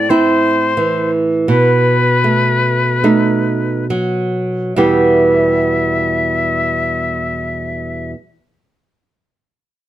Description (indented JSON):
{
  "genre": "romantic duo for flute and classical guitar",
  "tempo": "33-46 BPM",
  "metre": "4/4",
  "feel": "rubato",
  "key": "E minor",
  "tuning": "A4 = 437 Hz",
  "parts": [
    { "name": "silver concert flute", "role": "melody", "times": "0.0-8.1 s", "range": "B4 to E5", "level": "-17 LUFS", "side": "left 4 dB", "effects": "none" },
    { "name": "nylon-string guitar", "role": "accompaniment", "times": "0.0-8.1 s", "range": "E2 to G4", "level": "-14 LUFS", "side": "right 2 dB", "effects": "none" }
  ],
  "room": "moderate studio reverb, RT60 0.8 s",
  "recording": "dark, warm production",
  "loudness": "-12 LUFS",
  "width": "side -13 dB against mid",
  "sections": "0.0-4.8 A section; 4.8-9.9 B section",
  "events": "slowing down 0.0-4.8",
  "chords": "0.0 Am; 1.5 B7; 4.8 Em"
}